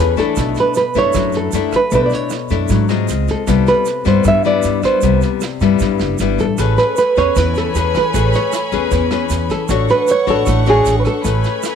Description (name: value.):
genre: bossa nova.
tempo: 154 BPM.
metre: 4/4.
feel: straight.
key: unclear.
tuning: A4 = 440 Hz.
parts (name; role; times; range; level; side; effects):
nylon-string guitar; accompaniment; 0.0-11.8 s; G2 to C#5; -18 LUFS; left 11 dB; none.
warm chamber string section; sustained chords; 0.0-0.4, 6.6-11.8 s; C#5 to C#6; -26 LUFS; left 1 dB; none.
upright bass; bass; 0.0-11.4 s; F#1 to G#2; -18 LUFS; right 2 dB; none.
nylon-string guitar; melody; 0.2-11.8 s; G#4 to E5; -16 LUFS; right 3 dB; none.
vintage brush drum kit; drums; 0.2-11.7 s; kick drum, rim click, snare drum; -26 LUFS; right 6 dB; none.
egg shaker; percussion; 0.2-11.8 s; none; -32 LUFS; right 21 dB; none.
room: little or no reverb.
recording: 1960s-style stereo with parts hard left and right.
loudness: -13 LUFS.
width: side -7 dB against mid.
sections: 0.4-11.8 A section.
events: none.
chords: 0.4 Bm11; 3.1 C#maj7; 3.5 Cmaj7; 6.6 Amaj9; 9.7 Dmaj7/A; 11.2 Amaj9.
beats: | 0.37 0.75 1.14 1.53 | 1.92 2.31 2.70 3.08 | 3.47 3.86 4.25 4.64 | 5.03 5.42 5.80 6.19 | 6.58 6.97 7.36 7.75 | 8.14 8.53 8.91 9.30 | 9.69 10.08 10.47 10.86 | 11.25 11.64.